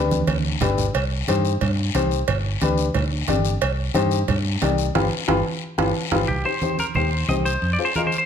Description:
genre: latin, cumbia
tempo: 180 BPM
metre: 4/4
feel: straight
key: unclear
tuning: A4 = 444 Hz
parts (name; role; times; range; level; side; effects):
- warm upright piano; accompaniment; 0.0-8.1 s; D4 to Eb5; -24 LUFS; left 6 dB; none
- fingered electric bass; bass; 0.0-7.8 s; G1 to G2; -23 LUFS; equal; none
- congas; percussion; 0.1-8.1 s; none; -27 LUFS; right 4 dB; none
- guiro; percussion; 0.1-8.3 s; none; -32 LUFS; left 9 dB; none
- cowbell and timbales; percussion; 0.3-6.2 s; none; -27 LUFS; right 8 dB; none
- clean electric guitar; melody; 6.3-8.3 s; G4 to Eb5; -23 LUFS; equal; spring reverb, slapback echo, plate reverb
room: moderate large studio reverb, RT60 0.8 s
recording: none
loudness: -19 LUFS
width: side -8 dB against mid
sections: 0.0-6.3 A section; 6.3-8.3 B section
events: drum fill 0.0-0.9; band accent 5.0-6.3; upright piano fill 5.8-6.3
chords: 0.0 G; 0.9 Cm; 2.3 G; 3.6 Cm; 5.0 G7; 6.3 Cm; 7.6 Fm

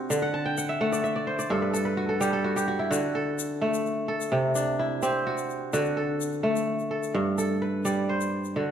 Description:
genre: west african traditional, West African string and xylophone music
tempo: 85 BPM (dotted quarters)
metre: 12/8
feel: straight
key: D mixolydian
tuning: A4 = 440 Hz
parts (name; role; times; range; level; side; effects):
- kora; arpeggios; 0.0-8.7 s; G2 to A5; -25 LUFS; equal; none
- egg shaker; percussion; 0.1-8.5 s; none; -38 LUFS; left 9 dB; none
room: moderate recital hall reverb, RT60 1.6 s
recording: dark, warm production, lossy compression artefacts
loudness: -24 LUFS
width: side -9 dB against mid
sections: 0.0-8.6 A section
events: kora fill 0.2-2.9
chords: 0.1 D; 1.5 N.C.; 2.9 D; 4.3 C; 5.7 D; 7.1 G

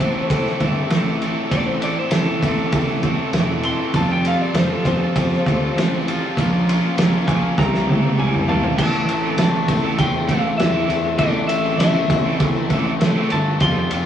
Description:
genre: indie rock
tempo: 99 BPM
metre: 4/4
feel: straight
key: unclear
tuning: A4 = 440 Hz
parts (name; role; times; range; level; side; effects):
- lightly driven lead guitar; melody; 0.0-14.1 s; A4 to C6; -25 LUFS; left 1 dB; tape echo
- biting overdriven guitar; riff; 0.0-14.0 s; A2 to F4; -26 LUFS; right 3 dB; none
- overdriven electric guitar; riff; 0.0-14.1 s; A2 to G4; -25 LUFS; left 4 dB; none
- fuzz fingered electric bass; bass; 0.0-14.1 s; E1 to A2; -22 LUFS; right 1 dB; overdrive
- loose indie drum kit; drums; 0.0-14.0 s; crash cymbal, kick drum, ride cymbal, snare drum, toms; -20 LUFS; right 1 dB; none
- warm analog pad; sustained chords; 8.8-14.1 s; E3 to C6; -37 LUFS; right 3 dB; none
room: moderate studio reverb, RT60 0.7 s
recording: rough rehearsal-room recording, small room ambience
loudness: -16 LUFS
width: side -10 dB against mid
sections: 0.0-8.8 A section; 8.8-14.1 B section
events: lead electric guitar solo 0.0-8.8; drum fill 7.6-8.8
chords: 0.0 Am; 3.9 Fsus2; 6.4 Bbm; 7.6 C7; 8.8 Am

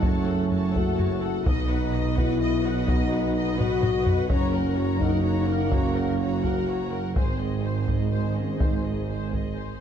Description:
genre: cinematic, epic orchestral film score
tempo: 84 BPM (dotted quarters)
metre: 6/8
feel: straight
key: unclear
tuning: A4 = 440 Hz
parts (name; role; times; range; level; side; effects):
- rich symphonic violin section; melody; 0.0-9.8 s; B#4 to A#5; -39 LUFS; left 4 dB; none
- warm symphonic violin section; second line; 0.0-9.8 s; G#4 to D#5; -38 LUFS; left 4 dB; none
- rich symphonic viola section; accompaniment; 0.0-9.8 s; F#4 to D#5; -36 LUFS; left 1 dB; none
- mellow French horn section; sustained chords; 0.0-9.3 s; B#3 to F#4; -28 LUFS; left 5 dB; none
- mellow trombone section; sustained chords; 0.0-9.8 s; D#3 to B3; -34 LUFS; right 5 dB; none
- mellow tuba; bass; 0.0-9.8 s; F#1 to B1; -32 LUFS; right 4 dB; none
- rich symphonic double bass section; bass; 0.0-9.8 s; F#1 to B1; -30 LUFS; right 3 dB; none
- warm symphonic cello section; bass; 0.0-9.8 s; F#2 to B2; -31 LUFS; right 3 dB; none
- solo taiko drums; drums; 0.0-9.8 s; none; -27 LUFS; left 1 dB; none
room: moderate scoring stage reverb, RT60 1.9 s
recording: dark, warm production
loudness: -22 LUFS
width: side -8 dB against mid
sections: 0.0-9.8 A section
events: drum fill 3.6-4.3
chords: 0.0 F#m; 1.5 B; 4.3 F#; 7.2 G#

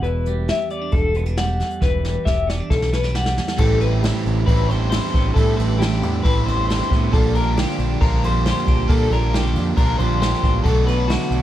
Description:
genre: math rock and midwest emo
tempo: 136 BPM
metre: 4/4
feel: straight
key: unclear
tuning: A4 = 439 Hz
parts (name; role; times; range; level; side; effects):
- twelve-string electric guitar; accompaniment; 0.0-11.4 s; E2 to A4; -25 LUFS; right 5 dB; plate reverb
- electric guitar through a small old amp; arpeggios; 0.0-11.4 s; F#4 to F#5; -24 LUFS; left 5 dB; tremolo, plate reverb
- growling picked electric bass; bass; 0.0-11.4 s; E1 to Bb2; -21 LUFS; equal; overdrive
- jazz brush drum kit; drums; 0.0-11.4 s; crash cymbal, hi-hat, kick drum, ride cymbal, snare drum; -22 LUFS; equal; none
- crunchy overdriven guitar; riff; 3.6-11.4 s; A2 to F#4; -26 LUFS; right 1 dB; none
room: light reverb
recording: dark, warm production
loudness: -16 LUFS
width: side -12 dB against mid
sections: 0.0-3.6 A section; 3.6-11.4 B section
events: drum fill 1.8-3.6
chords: 0.0 Em11; 3.6 Am11; 7.1 Bb6; 10.6 Bm7

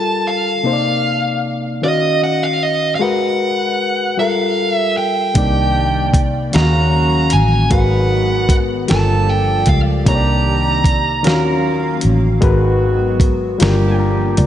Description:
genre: slow six-eight R&B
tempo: 51 BPM (dotted quarters)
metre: 6/8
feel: straight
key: unclear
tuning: A4 = 440 Hz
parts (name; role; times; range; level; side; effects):
- dark smooth lead guitar; melody; 0.0-14.0 s; Eb5 to Bb5; -18 LUFS; right 2 dB; overdrive, slapback echo
- overdriven reed electric piano; accompaniment; 0.0-14.5 s; C3 to Bb5; -19 LUFS; left 4 dB; none
- hollow soft pad; sustained chords; 5.8-14.5 s; C3 to F5; -25 LUFS; equal; ensemble chorus
- warm horn section; stabs; 5.4-14.4 s; Db3 to Cb5; -25 LUFS; right 3 dB; slapback echo
- vintage muted fingered electric bass; bass; 5.4-14.5 s; G1 to Eb2; -17 LUFS; right 1 dB; none
- dusty soul sampler-style drum kit; drums; 5.4-14.5 s; hi-hat, kick drum, snare drum; -16 LUFS; equal; none
room: moderate lush hall reverb, RT60 2.6 s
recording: big arena sound, nothing above 11.0 kHz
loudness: -13 LUFS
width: side -10 dB against mid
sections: 0.0-14.5 A section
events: reed electric piano fill 13.6-14.5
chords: 0.0 Gm9; 0.7 Cm9; 1.8 Ebm9; 3.0 Abm9; 4.2 Gm9; 5.4 Cm9; 6.5 Ebm9; 7.7 Abm9; 8.9 Gm9; 10.1 Cm9; 11.2 Ebm9; 12.4 Abm9; 13.6 Gm7

